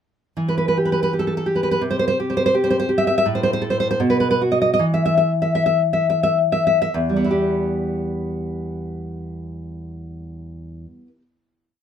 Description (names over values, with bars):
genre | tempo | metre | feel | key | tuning
romantic piece for solo classical guitar | 52-85 BPM | 2/4 | rubato | E minor | A4 = 440 Hz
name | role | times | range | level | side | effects
nylon-string guitar | solo | 0.4-11.2 s | E2 to E5 | -18 LUFS | equal | none
room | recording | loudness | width
moderate small room reverb, RT60 0.5 s | band playing live in one room | -17 LUFS | side -8 dB against mid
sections
0.4-6.9 A section; 6.9-11.5 final chord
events
slowing down 2.5-6.9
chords
0.4 Em; 1.8 C5; 3.2 N.C.; 4.0 B5; 4.8 N.C.; 6.9 Em